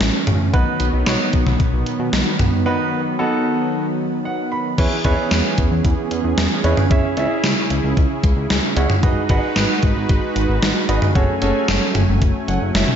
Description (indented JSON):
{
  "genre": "synth-pop",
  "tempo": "113 BPM",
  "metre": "4/4",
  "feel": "straight",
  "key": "E major",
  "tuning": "A4 = 438 Hz",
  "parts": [
    { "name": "brassy analog pad", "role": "sustained chords", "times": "0.0-13.0 s", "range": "C#3 to G#5", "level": "-23 LUFS", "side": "right 1 dB", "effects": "chorus, shimmer reverb" },
    { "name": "chorused synth bass", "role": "bass", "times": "0.0-12.8 s", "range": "F#1 to B2", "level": "-21 LUFS", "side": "left 1 dB", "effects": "none" },
    { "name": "gated 80s digital drum machine", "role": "drums", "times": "0.0-13.0 s", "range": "cowbell, crash cymbal, hi-hat, kick drum, snare drum, toms", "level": "-18 LUFS", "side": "equal", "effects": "gated reverb, gated reverb snare" },
    { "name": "clear baby grand piano", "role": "accompaniment", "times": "0.5-13.0 s", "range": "B3 to B5", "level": "-23 LUFS", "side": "right 2 dB", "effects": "slapback echo, shimmer reverb" }
  ],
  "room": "moderate scoring stage reverb, RT60 1.5 s",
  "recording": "big arena sound, nothing above 7.7 kHz",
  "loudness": "-16 LUFS",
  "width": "side -8 dB against mid",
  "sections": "0.0-4.8 A section; 4.8-13.0 B section",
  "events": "break 2.7-4.8; grand piano fill 4.0-4.8, 12.2-13.0",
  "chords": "0.0 A; 0.5 B; 4.8 E6; 6.9 C#m; 9.0 G#m7; 11.2 F#madd9"
}